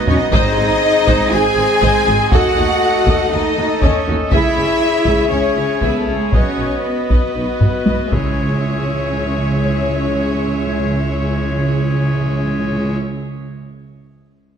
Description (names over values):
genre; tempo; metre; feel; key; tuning
cinematic, epic orchestral film score; 120 BPM; 4/4; straight; C# minor; A4 = 440 Hz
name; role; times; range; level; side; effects
warm symphonic violin section; melody; 0.0-13.0 s; G#4 to G#5; -24 LUFS; left 4 dB; none
rich symphonic violin section; second line; 0.0-13.0 s; G#4 to G#5; -24 LUFS; left 2 dB; none
rich symphonic viola section; accompaniment; 0.0-13.0 s; C#4 to E5; -25 LUFS; right 1 dB; none
dark French horn section; sustained chords; 0.0-13.0 s; E4 to E5; -23 LUFS; left 6 dB; none
pipe organ, trumpet; sustained chords; 0.0-13.0 s; G#3 to E5; -25 LUFS; right 1 dB; none
rich symphonic cello section; bass; 0.0-13.0 s; G#3 to G#4; -21 LUFS; right 2 dB; none
rich symphonic double bass section; bass; 0.1-13.0 s; G#1 to D#2; -22 LUFS; right 2 dB; none
taiko ensemble; drums; 0.1-9.1 s; none; -18 LUFS; equal; none
timpani; percussion; 0.3-1.0, 8.1-13.0 s; G#2 to C#3; -22 LUFS; right 2 dB; none
room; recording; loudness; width
moderate scoring stage reverb, RT60 2.1 s; none; -14 LUFS; side -8 dB against mid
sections
0.0-8.4 A section; 8.4-12.4 B section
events
drum fill 0.0-0.3, 7.6-8.4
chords
0.3 G#; 2.3 D#dim; 4.3 C#m; 6.3 B; 8.1 C#m